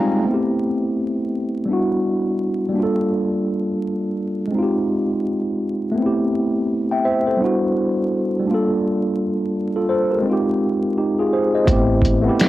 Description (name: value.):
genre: lo-fi hip hop.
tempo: 84 BPM.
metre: 4/4.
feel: swing 60% on 16ths.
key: unclear.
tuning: A4 = 439 Hz.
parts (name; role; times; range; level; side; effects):
tine electric piano; accompaniment; 0.0-12.5 s; G3 to Bb5; -18 LUFS; equal; medium stereo tremolo, cassette tape.
upright bass; bass; 11.7-12.3 s; A1; -20 LUFS; equal; none.
lo-fi sampler-style drum kit; drums; 11.7-12.5 s; hi-hat, kick drum, snare drum; -18 LUFS; equal; none.
room: light reverb, small room ambience.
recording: home recording on cassette, vinyl crackle.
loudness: -18 LUFS.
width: side -15 dB against mid.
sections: 0.2-11.7 A section.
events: break 0.0; tine electric piano fill 0.0.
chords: 0.2 Am9; 1.7 Em9; 2.7 Gm9; 4.5 Fm9; 6.0 Am9; 7.4 Em9; 8.5 Gm9; 10.2 Fm9; 11.7 Am9.